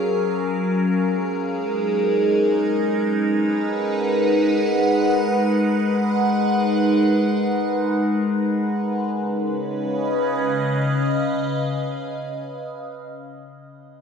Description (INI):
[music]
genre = ambient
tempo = free time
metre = none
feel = none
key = Db mixolydian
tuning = A4 = 439 Hz
[part]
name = evolving wavetable pad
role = sustained chords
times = 0.0-12.8 s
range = Db3 to Gb5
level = -19 LUFS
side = equal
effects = phaser, built-in reverb
[sound]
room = wet concert hall reverb, RT60 2.3 s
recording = dark, warm production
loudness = -18 LUFS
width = side -6 dB against mid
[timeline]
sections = 0.0-9.1 A section; 9.1-13.2 B section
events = none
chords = 0.0 Gbmaj7; 1.0 Abm9; 9.1 Db7